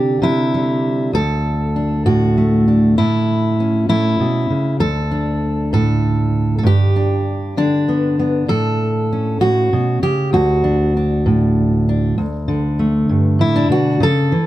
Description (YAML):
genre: folk, solo fingerstyle acoustic guitar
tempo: 65 BPM (dotted quarters)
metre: 6/8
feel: straight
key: D major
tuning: A4 = 440 Hz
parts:
  - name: fingerpicked steel-string acoustic guitar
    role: solo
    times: 0.0-14.5 s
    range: D2 to A4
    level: -14 LUFS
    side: equal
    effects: none
room: little or no reverb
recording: close, detailed microphones, lossy compression artefacts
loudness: -14 LUFS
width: side -14 dB against mid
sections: 0.0-12.2 A section; 12.2-14.5 B section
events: none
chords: 0.0 Cadd9; 1.1 D; 3.0 A; 4.8 D5; 6.7 G; 8.5 A; 10.3 D; 12.2 D5